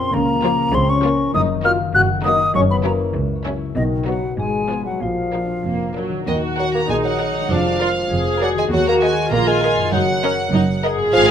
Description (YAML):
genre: cinematic, playful, whimsical film cue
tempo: 99 BPM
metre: 2/4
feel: straight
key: Eb minor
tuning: A4 = 442 Hz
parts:
  - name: marimba with medium mallets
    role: melody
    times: 0.0-11.3 s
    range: D#4 to Gb5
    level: -25 LUFS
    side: left 5 dB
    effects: none
  - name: warm studio violin section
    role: melody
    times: 0.0-11.3 s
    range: D4 to Bb5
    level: -25 LUFS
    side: equal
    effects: none
  - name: hollow concert flute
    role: second line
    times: 0.0-6.0 s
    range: D#5 to Gb6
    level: -21 LUFS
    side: left 1 dB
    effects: none
  - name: warm studio violin section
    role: second line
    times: 0.0-11.3 s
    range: Bb3 to Gb5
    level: -26 LUFS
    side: left 1 dB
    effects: none
  - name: warm studio viola section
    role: accompaniment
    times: 0.0-11.3 s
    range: F3 to Ab4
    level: -23 LUFS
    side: right 1 dB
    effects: none
  - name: mellow French horn section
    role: sustained chords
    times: 0.0-6.0 s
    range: D#3 to Gb4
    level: -24 LUFS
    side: left 2 dB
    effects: none
  - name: concert harp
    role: arpeggios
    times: 0.0-11.3 s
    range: Gb2 to Db5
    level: -26 LUFS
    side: left 10 dB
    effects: none
  - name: rich studio double bass section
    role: bass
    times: 0.1-11.3 s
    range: F1 to Eb2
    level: -25 LUFS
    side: right 3 dB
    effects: none
  - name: warm studio cello section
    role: bass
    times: 0.1-11.3 s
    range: Db2 to Db3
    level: -25 LUFS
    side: right 3 dB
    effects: none
  - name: mellow bassoon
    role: accompaniment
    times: 6.3-11.3 s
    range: Eb3 to Bb3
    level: -22 LUFS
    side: right 3 dB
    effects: none
room: light reverb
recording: close, detailed microphones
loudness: -16 LUFS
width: side -8 dB against mid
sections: 0.0-6.3 A section; 6.3-11.3 B section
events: none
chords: 0.1 Bbm/Db; 1.3 Ebm/Gb; 2.6 Gb7; 3.8 B; 4.4 Fdim/Ab; 5.0 Bb; 6.3 Ebm; 7.5 Bb7/F; 8.7 Ebm; 9.9 Ebm/Gb